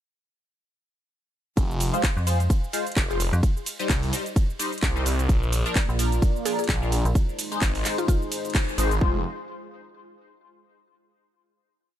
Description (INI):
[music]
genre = bass house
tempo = 129 BPM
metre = 4/4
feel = swing 57% on 16ths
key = F dorian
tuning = A4 = 440 Hz
[part]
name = phased detuned saw bass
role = bass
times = 1.6-9.2 s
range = F1 to C2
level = -25 LUFS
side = equal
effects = phaser, sidechain pumping
[part]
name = electronic kick drum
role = drums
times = 1.6-9.1 s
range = none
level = -22 LUFS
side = equal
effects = none
[part]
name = garage drum kit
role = drums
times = 1.6-9.0 s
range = handclaps, hi-hat, ride cymbal, shaker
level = -30 LUFS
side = right 1 dB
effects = none
[part]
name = band-passed chord stab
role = stabs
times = 1.9-9.2 s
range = F3 to C5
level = -30 LUFS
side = left 2 dB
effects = phaser, analog chorus, sidechain pumping, digital delay
[part]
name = metallic FM bass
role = bass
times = 2.2-7.1 s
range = Bb1 to F2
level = -22 LUFS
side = equal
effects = tube saturation, sidechain pumping
[part]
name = dark analog pad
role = sustained chords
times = 5.3-9.2 s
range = Ab3 to Ab5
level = -33 LUFS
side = equal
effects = chorus, sidechain pumping
[part]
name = mallet-like synth pluck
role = melody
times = 6.5-8.2 s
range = F4 to Ab4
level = -34 LUFS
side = right 1 dB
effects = chorus, digital delay
[sound]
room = digital ambience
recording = none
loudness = -22 LUFS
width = side -11 dB against mid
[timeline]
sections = 1.6-9.0 drop; 9.0-10.9 final chord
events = drop 1.6-9.0; band accent 8.5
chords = 1.6 Fm; 3.4 Cm; 5.3 Bb; 7.2 Ab; 9.0 Fm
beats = | 1.57 2.04 2.50 2.97 | 3.43 3.90 4.36 4.83 | 5.29 5.76 6.22 6.69 | 7.15 7.62 8.08 8.55 | 9.01